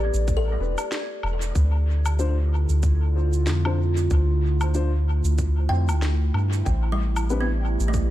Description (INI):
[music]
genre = ambient dub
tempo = 94 BPM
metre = 4/4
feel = swing 58% on 16ths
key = unclear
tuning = A4 = 442 Hz
[part]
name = warbly tape-like pad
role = sustained chords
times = 0.0-8.1 s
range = D3 to D5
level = -29 LUFS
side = right 1 dB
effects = chorus, built-in reverb
[part]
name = kalimba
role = arpeggios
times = 0.0-8.1 s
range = G3 to G5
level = -33 LUFS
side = equal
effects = dub echo
[part]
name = soft dub sub bass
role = bass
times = 0.0-8.1 s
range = E1 to G2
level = -21 LUFS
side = equal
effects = none
[part]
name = electronic cabasa, woodblock and snare drum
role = drums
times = 0.1-8.1 s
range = none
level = -34 LUFS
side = equal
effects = small room reverb, dub echo
[part]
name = electronic kick drum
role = drums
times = 0.3-8.1 s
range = none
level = -26 LUFS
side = equal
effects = small room reverb
[part]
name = dark upright piano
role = stabs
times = 2.2-7.4 s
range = C4 to C5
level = -34 LUFS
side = left 4 dB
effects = dub echo
[sound]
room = digital ambience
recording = echo-heavy mix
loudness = -20 LUFS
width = side -14 dB against mid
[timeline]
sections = 0.0-8.1 A section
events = none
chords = 0.0 A9sus4; 1.6 Dm; 6.7 A9sus4